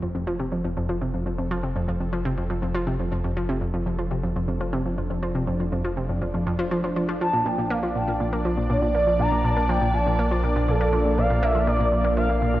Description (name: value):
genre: ambient, sequencer-driven space music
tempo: 121 BPM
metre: 4/4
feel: straight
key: F major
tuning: A4 = 440 Hz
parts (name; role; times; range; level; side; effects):
- lush unison pad; sustained chords; 0.0-12.6 s; F3 to D5; -29 LUFS; right 1 dB; chorus
- analog pluck; riff; 0.0-12.6 s; F2 to Bb3; -26 LUFS; equal; chorus, tape echo
- warm sub bass; bass; 0.0-12.6 s; F1 to Bb1; -28 LUFS; equal; none
- expressive portamento lead; melody; 7.2-12.6 s; A4 to Bb5; -24 LUFS; equal; wide subtle chorus, tape echo
room: wet concert hall reverb, RT60 2.3 s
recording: worn, warbling old tape, cassette tape, warbly pitch drift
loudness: -22 LUFS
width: side -15 dB against mid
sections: 0.0-12.6 A section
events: fade-in on analog synth pad 0.0-12.6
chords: 0.0 F; 7.2 Bb